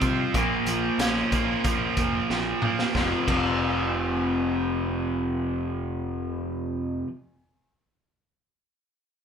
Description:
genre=classic rock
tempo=92 BPM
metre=4/4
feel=straight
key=unclear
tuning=A4 = 438 Hz
part: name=cranked stack guitar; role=riff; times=0.0-7.1 s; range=F2 to F4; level=-27 LUFS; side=right 6 dB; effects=overdrive
part: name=crunchy overdriven guitar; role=riff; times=0.0-7.1 s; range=F2 to C4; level=-29 LUFS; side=left 6 dB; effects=none
part: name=growling picked electric bass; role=bass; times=0.0-7.0 s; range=F1 to C3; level=-33 LUFS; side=equal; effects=overdrive
part: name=raw garage drum kit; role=drums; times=0.0-3.5 s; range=crash cymbal, hi-hat, kick drum, snare drum, toms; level=-29 LUFS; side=equal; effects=none
room=moderate studio reverb, RT60 0.7 s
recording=band playing live in one room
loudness=-23 LUFS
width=side -7 dB against mid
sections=0.0-3.0 A section; 3.0-5.6 B section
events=drum fill 2.3-3.0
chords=0.3 Bbm; 3.0 F5

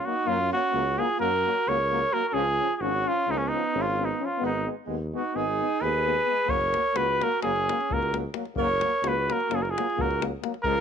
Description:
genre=balkan folk, Balkan brass band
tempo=260 BPM (eighths)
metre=9/8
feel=straight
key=F# major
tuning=A4 = 440 Hz
part: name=clear flugelhorn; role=melody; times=0.0-10.8 s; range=C#4 to C#5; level=-25 LUFS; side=left 1 dB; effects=none
part: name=mellow alto saxophone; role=second line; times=0.0-10.8 s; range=G#3 to A#4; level=-32 LUFS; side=right 14 dB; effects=none
part: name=bright trombone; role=accompaniment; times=0.1-10.8 s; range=E#3 to G#3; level=-39 LUFS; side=right 15 dB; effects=none
part: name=warm euphonium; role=accompaniment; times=0.1-10.7 s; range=G#3 to C#4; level=-34 LUFS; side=left 13 dB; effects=none
part: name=mellow tuba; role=bass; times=0.3-10.8 s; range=F#1 to F#2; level=-32 LUFS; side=equal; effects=none
part: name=davul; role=percussion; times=6.5-10.8 s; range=none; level=-35 LUFS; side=left 4 dB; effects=none
room=light reverb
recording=1960s-style stereo with parts hard left and right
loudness=-23 LUFS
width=side -7 dB against mid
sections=0.0-10.8 A section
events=none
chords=0.0 F#; 2.3 C#; 4.4 G#m; 6.5 F#

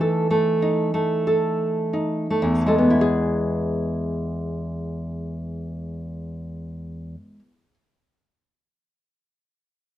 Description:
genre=romantic piece for solo classical guitar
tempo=40-52 BPM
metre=3/4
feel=rubato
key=E major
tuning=A4 = 440 Hz
part: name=nylon-string guitar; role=solo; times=0.0-7.7 s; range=E2 to B4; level=-21 LUFS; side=equal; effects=none
room=light reverb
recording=minimal, uncompressed stereo recording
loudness=-20 LUFS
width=side -12 dB against mid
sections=0.0-3.0 A section; 3.0-6.9 B section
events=slowing down 0.0-3.0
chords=0.0 B7/E; 3.0 E

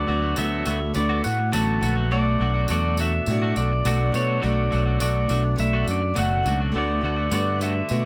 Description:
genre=folk rock and heartland rock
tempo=104 BPM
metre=4/4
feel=straight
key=unclear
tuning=A4 = 440 Hz
part: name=pedal steel guitar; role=melody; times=0.0-8.1 s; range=C#5 to A5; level=-29 LUFS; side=equal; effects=dub echo
part: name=picked steel-string acoustic guitar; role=accompaniment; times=0.0-8.1 s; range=B2 to F#4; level=-31 LUFS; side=equal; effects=dub echo
part: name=twelve-string electric guitar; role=riff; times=0.0-8.0 s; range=B2 to F#4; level=-31 LUFS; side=equal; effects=none
part: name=picked electric bass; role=bass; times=0.0-8.1 s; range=F#1 to B2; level=-26 LUFS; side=equal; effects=none
part: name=tambourine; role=percussion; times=0.4-8.0 s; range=none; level=-39 LUFS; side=equal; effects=dub echo
room=light reverb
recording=echo-heavy mix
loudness=-23 LUFS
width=mono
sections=0.0-8.1 A section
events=none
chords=0.0 D6; 2.1 Bm7; 6.7 D6

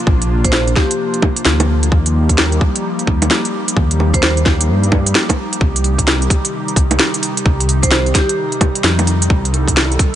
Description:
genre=future garage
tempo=130 BPM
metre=4/4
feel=swing 62% on 16ths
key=C minor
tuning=A4 = 440 Hz
part: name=airy breathy pad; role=sustained chords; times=0.0-10.2 s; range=C3 to A4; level=-21 LUFS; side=left 1 dB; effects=chorus, sidechain pumping
part: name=swelling detuned saw bass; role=bass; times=0.1-10.0 s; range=Bb1 to G2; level=-16 LUFS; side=equal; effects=sidechain pumping
part: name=electronic kick drum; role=drums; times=0.1-10.1 s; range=none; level=-15 LUFS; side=equal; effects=none
part: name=organic electronic drum kit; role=drums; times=0.2-10.1 s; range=bongos, hi-hat, snare drum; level=-16 LUFS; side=right 1 dB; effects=none
part: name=vibraphone with medium hard mallets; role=melody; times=0.4-1.2, 4.1-4.4, 7.8-8.6 s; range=G4 to C5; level=-23 LUFS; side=right 1 dB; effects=digital delay
room=light reverb, digital ambience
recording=nothing above 10.4 kHz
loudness=-12 LUFS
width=side -11 dB against mid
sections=0.0-10.2 A section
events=none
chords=0.0 Bbadd9; 1.9 Ebadd9; 5.6 Cm

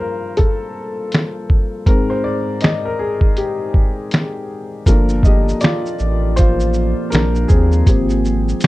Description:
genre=lo-fi hip hop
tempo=80 BPM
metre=4/4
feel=swing 62% on 16ths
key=G phrygian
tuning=A4 = 440 Hz
part: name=warm upright piano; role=accompaniment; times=0.0-8.7 s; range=G2 to Eb5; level=-20 LUFS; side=left 2 dB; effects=none
part: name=lo-fi sampler-style drum kit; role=drums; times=0.4-8.7 s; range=finger snaps, hi-hat, kick drum, shaker, snare drum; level=-14 LUFS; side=equal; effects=none
part: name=deep dark ambient pad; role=sustained chords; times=5.8-8.7 s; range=F3 to G5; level=-25 LUFS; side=right 2 dB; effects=chorus, built-in reverb
part: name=round analog bass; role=bass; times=4.9-8.5 s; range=G1 to Eb2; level=-17 LUFS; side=equal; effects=none
room=light reverb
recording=dark, warm production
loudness=-14 LUFS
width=side -18 dB against mid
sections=0.0-4.9 A section; 4.9-8.7 B section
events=upright piano solo 0.0-4.9, 4.9-8.7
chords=0.0 Gm9; 1.9 Abmaj7; 4.9 Gm9; 7.9 Abmaj9

